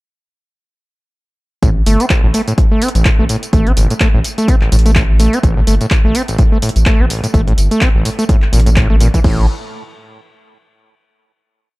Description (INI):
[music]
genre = acid house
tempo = 126 BPM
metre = 4/4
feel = swing 57% on 16ths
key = A phrygian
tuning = A4 = 440 Hz
[part]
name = overdriven acid bass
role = riff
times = 1.6-9.5 s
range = A1 to C4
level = -17 LUFS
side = equal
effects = distortion, digital delay
[part]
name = round analog bass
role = bass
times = 1.6-9.5 s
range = G1 to A1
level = -13 LUFS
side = equal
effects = sidechain pumping
[part]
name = electronic kick drum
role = drums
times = 1.6-9.4 s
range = none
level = -13 LUFS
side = equal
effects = none
[part]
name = punchy analog drum machine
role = drums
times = 1.6-9.4 s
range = crash cymbal, handclaps, hi-hat, tambourine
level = -21 LUFS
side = equal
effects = none
[sound]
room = digital ambience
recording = dark, warm production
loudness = -10 LUFS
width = side -21 dB against mid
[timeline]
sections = 1.6-9.2 drop; 9.2-11.1 final chord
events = drop 1.6-9.2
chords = none